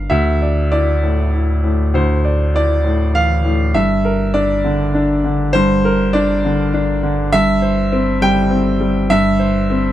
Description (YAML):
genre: neoclassical piano and strings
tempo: 100 BPM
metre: 3/4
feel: rubato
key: unclear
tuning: A4 = 440 Hz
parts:
  - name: clear upright piano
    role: accompaniment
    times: 0.0-9.9 s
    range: D2 to G5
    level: -14 LUFS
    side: equal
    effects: none
  - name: warm sub bass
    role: bass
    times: 0.0-9.9 s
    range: G1 to D2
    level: -19 LUFS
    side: equal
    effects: none
room: light reverb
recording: none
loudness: -13 LUFS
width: side -12 dB against mid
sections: 0.1-9.9 A section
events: none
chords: 0.1 Dmadd9; 3.7 Gm; 7.3 C/G